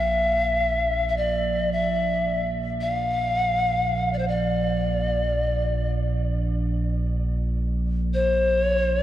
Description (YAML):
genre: world meditative, free-time meditation music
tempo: free time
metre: none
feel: none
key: Bb lydian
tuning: A4 = 445 Hz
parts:
  - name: breathy bright polished pan flute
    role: melody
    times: 0.0-9.0 s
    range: C5 to F5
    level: -23 LUFS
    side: left 1 dB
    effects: shimmer reverb, diffuse ambient delay
  - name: analog drone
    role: drone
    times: 0.0-9.0 s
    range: Bb1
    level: -25 LUFS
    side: right 1 dB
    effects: wide subtle chorus
room: moderate huge ambient reverb, RT60 4.8 s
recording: dark, warm production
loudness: -21 LUFS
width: side -12 dB against mid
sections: 0.0-9.0 A section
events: none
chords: none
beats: free time